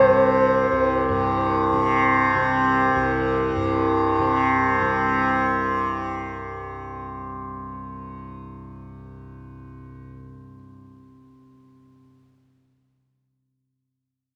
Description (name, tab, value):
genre	world meditative, free-time meditation music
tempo	free time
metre	none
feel	none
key	unclear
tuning	A4 = 440 Hz
part	mellow polished pan flute	melody	0.0-0.9 s	C5	-23 LUFS	equal	diffuse ambient delay
part	tanpura	drone	0.0-12.0 s	C2 to C3	-23 LUFS	equal	none
room	wet cathedral reverb, RT60 3.9 s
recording	dark, warm production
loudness	-21 LUFS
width	mono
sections	0.0-1.1 A section; 1.1-5.1 B section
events	none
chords	none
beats	free time